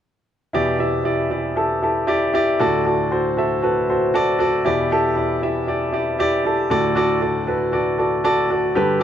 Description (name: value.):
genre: pop.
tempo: 117 BPM.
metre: 4/4.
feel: swing 56% on 16ths.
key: unclear.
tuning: A4 = 440 Hz.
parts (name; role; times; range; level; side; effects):
clear baby grand piano; accompaniment; 0.5-9.0 s; D2 to E5; -17 LUFS; equal; none.
room: moderate plate reverb, RT60 2.7 s.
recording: none.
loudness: -17 LUFS.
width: side -10 dB against mid.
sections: 0.5-4.6 A section; 4.6-9.0 B section.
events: none.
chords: 0.5 Em7; 2.6 D; 4.6 Em7; 6.7 D.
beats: | 0.54 1.05 1.56 2.08 | 2.59 3.10 3.62 4.13 | 4.64 5.16 5.67 6.18 | 6.70 7.21 7.73 8.24 | 8.75.